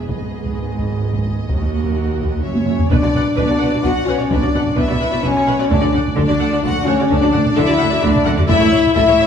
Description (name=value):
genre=cinematic, epic orchestral film score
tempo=129 BPM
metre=3/4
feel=straight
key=B minor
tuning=A4 = 440 Hz
part: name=rich chamber violin section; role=melody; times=0.0-9.3 s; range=C#5 to F#5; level=-27 LUFS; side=left 3 dB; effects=none
part: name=warm symphonic violin section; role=second line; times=0.0-9.3 s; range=A#4 to F#5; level=-27 LUFS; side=left 2 dB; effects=none
part: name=warm symphonic viola section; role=accompaniment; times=0.0-9.2 s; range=D4 to F#5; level=-24 LUFS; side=equal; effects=none
part: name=mellow French horn section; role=sustained chords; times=0.0-9.3 s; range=A#3 to G#4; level=-18 LUFS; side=left 3 dB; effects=none
part: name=rich symphonic double bass section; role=bass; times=0.0-9.2 s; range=F#1 to D#2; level=-23 LUFS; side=right 4 dB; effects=none
part: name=warm studio cello section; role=bass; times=0.0-9.2 s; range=D#2 to D3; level=-22 LUFS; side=right 2 dB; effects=none
part: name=taiko ensemble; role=drums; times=0.1-9.3 s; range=none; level=-21 LUFS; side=equal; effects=none
room=wet concert hall reverb, RT60 2.2 s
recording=small room ambience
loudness=-14 LUFS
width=side -8 dB against mid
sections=0.0-2.9 A section; 2.9-9.3 B section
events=drum fill 2.5-2.9, 8.1-8.5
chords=0.1 G#m; 1.5 D#m; 2.4 F#5; 2.9 Bm; 5.7 D; 8.5 A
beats=| 0.08 0.55 1.01 | 1.48 1.95 2.43 | 2.90 3.37 3.84 | 4.31 4.78 5.24 | 5.71 6.17 6.64 | 7.10 7.57 8.03 | 8.49 8.95